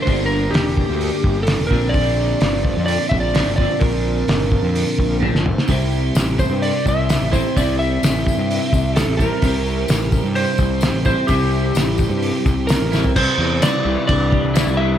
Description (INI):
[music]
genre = psychedelic rock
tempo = 128 BPM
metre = 4/4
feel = straight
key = unclear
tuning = A4 = 441 Hz
[part]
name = electric slide guitar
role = melody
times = 0.0-15.0 s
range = G4 to E5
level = -22 LUFS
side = right 1 dB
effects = analog delay
[part]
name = tonewheel organ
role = sustained chords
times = 0.0-13.1 s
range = G3 to A5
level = -34 LUFS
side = right 6 dB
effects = slow rotary speaker, overdrive
[part]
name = clean electric guitar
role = riff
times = 0.0-15.0 s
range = G2 to E4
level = -22 LUFS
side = equal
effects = flanger, double-tracked left and right
[part]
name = fuzz picked electric bass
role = bass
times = 0.1-15.0 s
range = E1 to G2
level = -21 LUFS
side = equal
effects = overdrive
[part]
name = cloth-damped thuddy drum kit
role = drums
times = 0.1-14.7 s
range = crash cymbal, hi-hat, kick drum, snare drum, toms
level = -20 LUFS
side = equal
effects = none
[part]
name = tambourine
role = percussion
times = 5.7-14.7 s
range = none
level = -35 LUFS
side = left 13 dB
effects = none
[sound]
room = small room reverb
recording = none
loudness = -15 LUFS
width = side -10 dB against mid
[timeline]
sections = 0.0-13.2 A section; 13.2-15.0 B section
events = drum fill 5.2-5.7, 12.9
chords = 0.0 Gm; 1.7 Bbadd9; 5.7 C; 13.2 Cadd9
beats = | 0.07 0.54 1.00 1.47 | 1.94 2.41 2.88 3.34 | 3.81 4.28 4.75 5.21 | 5.68 6.15 6.61 7.08 | 7.55 8.02 8.48 8.95 | 9.42 9.88 10.35 10.82 | 11.29 11.75 12.22 12.69 | 13.15 13.62 14.09 14.55